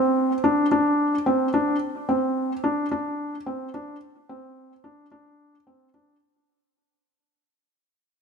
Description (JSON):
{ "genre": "electronica", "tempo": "109 BPM", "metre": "4/4", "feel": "straight", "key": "unclear", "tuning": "A4 = 440 Hz", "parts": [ { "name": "felt-muted upright piano", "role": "riff", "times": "0.0-6.2 s", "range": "C4 to D4", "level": "-21 LUFS", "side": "equal", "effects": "tape echo" } ], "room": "wet echo chamber reverb, RT60 1.4 s", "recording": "none", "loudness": "-21 LUFS", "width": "side -6 dB against mid", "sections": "0.0-6.2 A section", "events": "fade-out 0.0-6.2", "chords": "none" }